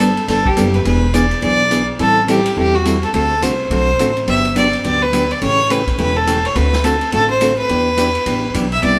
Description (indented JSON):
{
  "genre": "country, western swing",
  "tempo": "211 BPM",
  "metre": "4/4",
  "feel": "swing 61% on 8ths",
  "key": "unclear",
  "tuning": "A4 = 439 Hz",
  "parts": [
    { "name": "clear fiddle", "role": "melody", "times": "0.0-9.0 s", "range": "F#4 to E5", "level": "-19 LUFS", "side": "equal", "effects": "none" },
    { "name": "hollow-body jazz guitar", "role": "accompaniment", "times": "0.0-9.0 s", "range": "C3 to A4", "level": "-21 LUFS", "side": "equal", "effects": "none" },
    { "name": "upright bass", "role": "bass", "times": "0.0-9.0 s", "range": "E1 to E2", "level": "-23 LUFS", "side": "equal", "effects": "none" },
    { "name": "vintage drum kit", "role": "drums", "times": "0.0-8.9 s", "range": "hi-hat, kick drum, ride cymbal, snare drum", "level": "-27 LUFS", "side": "equal", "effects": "none" }
  ],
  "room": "wet stone room reverb, RT60 1.2 s",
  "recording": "band playing live in one room",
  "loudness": "-16 LUFS",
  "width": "mono",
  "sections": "0.0-9.0 A section",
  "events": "none",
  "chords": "0.0 Gadd9; 0.9 E7; 2.0 Am7; 3.1 D7; 4.3 Gmaj7; 5.4 A7; 6.6 D7; 7.7 Em7"
}